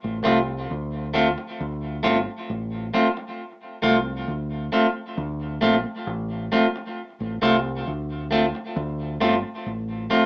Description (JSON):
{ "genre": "roots reggae", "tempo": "67 BPM", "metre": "4/4", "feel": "straight", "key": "D minor", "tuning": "A4 = 444 Hz", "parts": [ { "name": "deep dub fingered electric bass", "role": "bass", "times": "0.0-10.1 s", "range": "G1 to D2", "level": "-28 LUFS", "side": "equal", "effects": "none" }, { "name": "clean electric guitar", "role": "accompaniment", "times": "0.2-10.2 s", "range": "A3 to F4", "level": "-22 LUFS", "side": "equal", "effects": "tape echo" } ], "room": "moderate small room reverb, RT60 0.6 s", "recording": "small speaker sound", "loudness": "-21 LUFS", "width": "side -24 dB against mid", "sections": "0.0-10.3 A section", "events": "none", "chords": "0.0 Dm7" }